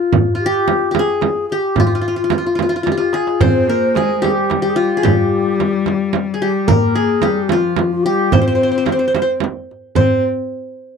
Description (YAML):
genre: Arabic maqam ensemble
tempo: 73 BPM (dotted quarters)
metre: 6/8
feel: straight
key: unclear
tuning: A4 = 439 Hz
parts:
  - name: qanun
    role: melody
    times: 0.0-10.2 s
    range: F4 to C5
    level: -17 LUFS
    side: left 1 dB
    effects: none
  - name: darbuka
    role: percussion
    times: 0.1-10.2 s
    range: none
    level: -20 LUFS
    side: left 1 dB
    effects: none
  - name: frame drum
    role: percussion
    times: 0.1-10.2 s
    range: none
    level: -19 LUFS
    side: right 9 dB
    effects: none
  - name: breathy reedy low ney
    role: second line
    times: 0.4-10.2 s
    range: F4 to C5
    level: -22 LUFS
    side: left 5 dB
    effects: none
  - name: warm cello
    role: second line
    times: 3.4-10.2 s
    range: F3 to C4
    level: -20 LUFS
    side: left 8 dB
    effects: none
room: light reverb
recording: dry, close 1970s-style studio recording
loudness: -14 LUFS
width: side -6 dB against mid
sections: 0.0-10.0 A section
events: drum fill 2.9-3.4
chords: none